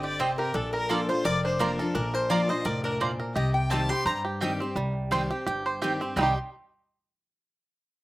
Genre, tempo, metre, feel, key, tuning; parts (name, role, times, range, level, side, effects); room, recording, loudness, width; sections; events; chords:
bluegrass; 171 BPM; 4/4; swing 55% on 8ths; C dorian; A4 = 440 Hz
bluegrass banjo; melody; 0.0-6.4 s; G3 to C5; -31 LUFS; right 3 dB; slapback echo
rich fiddle; melody; 0.0-6.3 s; A4 to C6; -33 LUFS; left 2 dB; slapback echo
lap resonator guitar; second line; 0.0-4.2 s; A4 to C6; -31 LUFS; left 2 dB
picked steel-string acoustic guitar; accompaniment; 0.0-6.3 s; F2 to G4; -31 LUFS; left 2 dB
upright bass; bass; 0.0-6.3 s; F1 to G2; -33 LUFS; equal
mandolin; stabs; 0.2-6.3 s; Bb3 to Bb5; -30 LUFS; right 3 dB; slapback echo
little or no reverb; recorded outdoors, with no room sound; -24 LUFS; side -17 dB against mid
0.0-4.8 A section; 4.8-6.2 B section; 6.2-7.6 C section
0.0 Cm; 0.5 Bb; 3.4 Cm